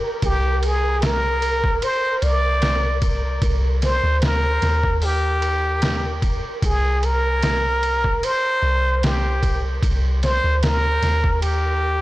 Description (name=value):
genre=trip hop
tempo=75 BPM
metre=4/4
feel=swing 54% on 16ths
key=C minor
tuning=A4 = 439 Hz
part: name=flickering grainy texture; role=texture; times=0.0-12.0 s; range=Bb4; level=-33 LUFS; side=right 1 dB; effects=built-in reverb
part: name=soft 808-style bass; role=bass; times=0.2-12.0 s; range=C2 to Eb2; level=-21 LUFS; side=equal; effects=tube saturation
part: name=trip hop sampler-style drum kit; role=drums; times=0.2-11.6 s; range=hi-hat, kick drum, ride cymbal, snare drum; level=-25 LUFS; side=equal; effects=none
part: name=trumpet with plunger mute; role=melody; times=0.3-12.0 s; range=G4 to D5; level=-21 LUFS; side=equal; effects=tape echo
room=little or no reverb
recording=blown-out, overdriven recording, vinyl crackle, overdrive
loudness=-17 LUFS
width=side -17 dB against mid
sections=0.0-12.0 A section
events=none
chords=0.0 Cm7